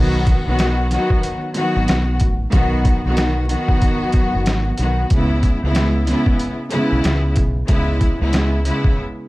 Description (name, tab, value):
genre	hip hop, boom-bap hip-hop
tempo	93 BPM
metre	4/4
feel	swing 61% on 16ths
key	unclear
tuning	A4 = 440 Hz
part	warm symphonic string section	accompaniment	0.0-9.0 s	C#3 to F#4	-19 LUFS	equal	plate reverb
part	deep dub fingered electric bass	bass	0.0-8.7 s	F#1 to C#2	-19 LUFS	equal	none
part	trip hop sampler-style drum kit	drums	0.3-9.0 s	hi-hat, kick drum, snare drum	-18 LUFS	equal	none
room	light reverb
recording	dark, warm production, vinyl crackle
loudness	-15 LUFS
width	side -19 dB against mid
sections	0.0-9.3 A section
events	break 9.0-9.3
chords	0.0 B; 5.1 C#m7